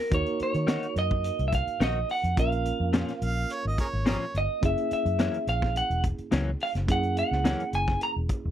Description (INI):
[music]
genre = straight-eighth soul blues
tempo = 106 BPM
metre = 4/4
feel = straight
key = unclear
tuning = A4 = 440 Hz
[part]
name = electric guitar at the edge of break-up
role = melody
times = 0.0-8.1 s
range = Bb4 to Bb5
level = -29 LUFS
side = right 1 dB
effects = none
[part]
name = mellow reed electric piano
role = accompaniment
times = 0.0-8.5 s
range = Bb3 to Bb4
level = -34 LUFS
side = right 5 dB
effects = medium tremolo
[part]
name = vintage muted fingered electric bass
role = bass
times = 0.1-8.5 s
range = Fb1 to Eb3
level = -29 LUFS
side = equal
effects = none
[part]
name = crunchy breakbeat drum kit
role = drums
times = 0.1-8.4 s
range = hi-hat, kick drum, snare drum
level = -28 LUFS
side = equal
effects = none
[part]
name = direct-recorded clean electric guitar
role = stabs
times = 0.7-7.6 s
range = Gb2 to Gb4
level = -30 LUFS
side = left 4 dB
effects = analog chorus
[part]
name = bright harmonica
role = second line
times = 3.2-4.4 s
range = Ab4 to F5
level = -32 LUFS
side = right 3 dB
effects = overdrive
[sound]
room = little or no reverb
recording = dry, close 1970s-style studio recording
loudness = -24 LUFS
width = side -11 dB against mid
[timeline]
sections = 0.0-8.5 A section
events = none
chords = 0.0 Ebm; 2.4 Bbm; 4.6 Gb7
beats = | 0.12 0.68 1.25 1.81 | 2.37 2.94 3.50 4.07 | 4.63 5.20 5.76 6.32 | 6.89 7.45 8.02